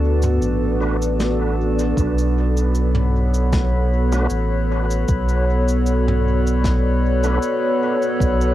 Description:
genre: ambient dub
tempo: 77 BPM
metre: 4/4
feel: straight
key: B minor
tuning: A4 = 440 Hz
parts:
  - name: warbly tape-like pad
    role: sustained chords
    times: 0.0-8.5 s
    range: B3 to D5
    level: -21 LUFS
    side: equal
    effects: chorus, built-in reverb, cassette tape
  - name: warm sub bass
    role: bass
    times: 0.0-8.5 s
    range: A1 to D2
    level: -19 LUFS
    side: equal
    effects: none
  - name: drifting glass-harmonics texture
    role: texture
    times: 0.0-8.5 s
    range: D4 to B4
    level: -28 LUFS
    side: equal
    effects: chorus, built-in reverb, cassette tape
  - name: soft brush drum kit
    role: drums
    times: 0.2-8.5 s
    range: cabasa, snare drum, toms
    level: -29 LUFS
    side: equal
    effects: dub echo
  - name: tonewheel organ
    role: stabs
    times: 0.8-7.4 s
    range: A3 to B4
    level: -29 LUFS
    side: right 1 dB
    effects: chorus vibrato, fast rotary speaker, cassette tape, dub echo
  - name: electronic kick drum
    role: drums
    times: 2.0-8.4 s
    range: none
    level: -22 LUFS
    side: equal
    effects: none
room: light reverb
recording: home recording on cassette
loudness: -16 LUFS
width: side -14 dB against mid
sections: 0.0-2.0 A section; 2.0-8.5 B section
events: break 0.4-2.0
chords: 0.0 Bm7

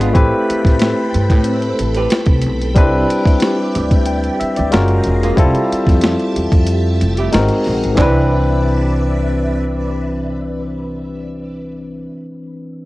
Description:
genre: R&B, neo-soul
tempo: 92 BPM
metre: 4/4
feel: swing 54% on 16ths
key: C major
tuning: A4 = 440 Hz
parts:
  - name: archtop guitar, miked and amplified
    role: second line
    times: 0.0-12.1 s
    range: A3 to B4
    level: -22 LUFS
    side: right 3 dB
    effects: cassette tape
  - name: barky tine electric piano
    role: accompaniment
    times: 0.0-12.9 s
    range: E3 to G5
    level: -18 LUFS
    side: left 2 dB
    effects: auto-pan, cassette tape
  - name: phased string machine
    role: sustained chords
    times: 0.0-11.3 s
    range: C3 to B5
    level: -26 LUFS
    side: right 1 dB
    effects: ensemble chorus, phaser, cassette tape
  - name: upright bass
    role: bass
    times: 0.0-12.1 s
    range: E1 to A2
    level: -18 LUFS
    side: equal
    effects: none
  - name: boom bap sampler-style drum kit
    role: drums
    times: 0.0-8.1 s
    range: handclaps, hi-hat, kick drum, snare drum, toms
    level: -14 LUFS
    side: equal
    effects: cassette tape
room: light reverb, digital ambience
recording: home recording on cassette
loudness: -13 LUFS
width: side -19 dB against mid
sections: 0.0-8.0 A section; 8.0-10.6 B section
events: kick muted 6.7-8.0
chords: 0.2 Am9; 2.8 Cmaj9; 4.7 F#maj9; 5.4 Fmaj9; 7.3 Ab9; 8.0 Cmaj9

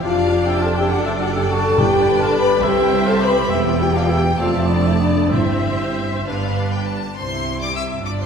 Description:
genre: quick classical-period movement for symphony orchestra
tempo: 64-70 BPM (dotted quarters)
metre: 6/8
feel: rubato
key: C major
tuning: A4 = 443 Hz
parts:
  - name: clear chamber violin section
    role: melody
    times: 0.0-8.3 s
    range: D5 to E6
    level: -28 LUFS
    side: left 5 dB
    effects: none
  - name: mellow cor anglais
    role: second line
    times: 0.0-6.2 s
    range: B3 to G4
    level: -27 LUFS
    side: right 2 dB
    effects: none
  - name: mellow hollow concert flute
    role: second line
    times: 0.0-6.3 s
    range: D5 to B5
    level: -27 LUFS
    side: left 2 dB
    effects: none
  - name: rich chamber violin section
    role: second line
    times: 0.0-8.3 s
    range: C5 to B5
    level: -28 LUFS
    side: left 3 dB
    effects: none
  - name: rich chamber viola section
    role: accompaniment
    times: 0.0-8.3 s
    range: A3 to D5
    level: -24 LUFS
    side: right 1 dB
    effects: none
  - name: dark French horn section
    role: sustained chords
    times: 0.0-6.2 s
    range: D4 to B4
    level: -20 LUFS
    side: left 2 dB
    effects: none
  - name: rich chamber cello section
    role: bass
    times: 0.0-8.3 s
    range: C2 to C3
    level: -24 LUFS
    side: right 2 dB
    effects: none
  - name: rich chamber double bass section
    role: bass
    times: 0.0-8.3 s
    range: E1 to C2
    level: -24 LUFS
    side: right 3 dB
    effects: none
  - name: timpani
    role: percussion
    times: 1.8-2.6, 5.3-6.2 s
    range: G2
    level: -25 LUFS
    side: equal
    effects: none
room: wet scoring stage reverb, RT60 1.8 s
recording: heard from further back in the room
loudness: -16 LUFS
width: side -6 dB against mid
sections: 0.0-7.2 A section; 7.2-8.3 B section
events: none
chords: 0.0 Dm/F; 0.9 D/F#; 1.8 G; 2.6 C; 3.5 Em; 4.4 F; 5.3 C/G; 6.3 G; 7.2 C

